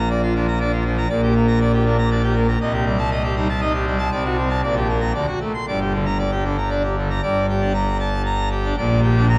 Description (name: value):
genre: classical, organ toccata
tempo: 118 BPM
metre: 3/4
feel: straight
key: G minor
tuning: A4 = 435 Hz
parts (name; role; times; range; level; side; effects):
- pipe organ, full organ; solo; 0.0-9.4 s; G1 to C6; -20 LUFS; equal; none
room: wet cathedral reverb, RT60 4.7 s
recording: vinyl crackle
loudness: -20 LUFS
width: mono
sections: 0.0-7.2 A section; 7.2-9.4 B section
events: none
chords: 0.0 Bb; 1.1 Gm/Bb; 2.6 Am7b5/C; 4.1 D7/C; 4.6 Gm/Bb; 5.2 D7; 5.7 Gm; 8.8 Gm/Bb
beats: 0.10 0.60 | 1.10 1.61 2.11 | 2.61 3.11 3.62 | 4.13 4.63 5.15 | 5.67 6.20 6.72 | 7.24 7.75 8.26 | 8.78 9.28